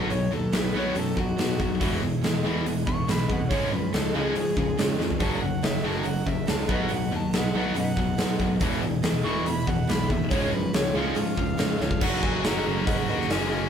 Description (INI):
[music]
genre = classic rock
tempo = 141 BPM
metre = 4/4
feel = straight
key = F# major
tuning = A4 = 440 Hz
[part]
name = overdriven harmonica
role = melody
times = 0.0-13.7 s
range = D#4 to C#6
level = -32 LUFS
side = equal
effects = analog delay
[part]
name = picked steel-string acoustic guitar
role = accompaniment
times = 0.0-12.0 s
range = B2 to B4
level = -36 LUFS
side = right 5 dB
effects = none
[part]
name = distorted electric guitar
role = riff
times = 0.0-13.7 s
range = E2 to C#4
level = -30 LUFS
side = right 6 dB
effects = distortion
[part]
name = tight distorted guitar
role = riff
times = 0.0-13.7 s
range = E2 to F#4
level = -30 LUFS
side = left 6 dB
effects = distortion
[part]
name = picked electric bass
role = bass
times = 0.0-13.7 s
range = E1 to C#3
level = -32 LUFS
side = equal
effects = none
[part]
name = huge arena drum kit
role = drums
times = 0.1-13.4 s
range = crash cymbal, hi-hat, kick drum, snare drum, toms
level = -27 LUFS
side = equal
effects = none
[sound]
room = moderate studio reverb, RT60 0.6 s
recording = band playing live in one room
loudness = -23 LUFS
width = side -8 dB against mid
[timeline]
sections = 0.0-12.0 A section; 12.0-13.7 B section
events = harmonica solo 0.0-12.0; drum fill 5.0, 11.8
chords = 0.0 B; 1.8 E; 3.5 C#; 5.2 F#; 6.7 B; 8.6 E; 10.3 C#; 12.0 F#